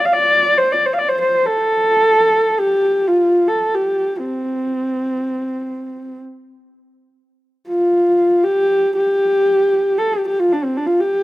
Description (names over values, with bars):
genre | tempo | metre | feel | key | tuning
mongolian traditional | free time | none | none | C zhi mode | A4 = 441 Hz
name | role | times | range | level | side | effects
dark horsehead fiddle | solo | 0.0-11.2 s | C4 to F5 | -14 LUFS | equal | none
room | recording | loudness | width
light reverb, small room ambience | rough home demo mix | -14 LUFS | side -16 dB against mid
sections
0.0-7.1 A section; 7.1-11.2 A section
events
none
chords
none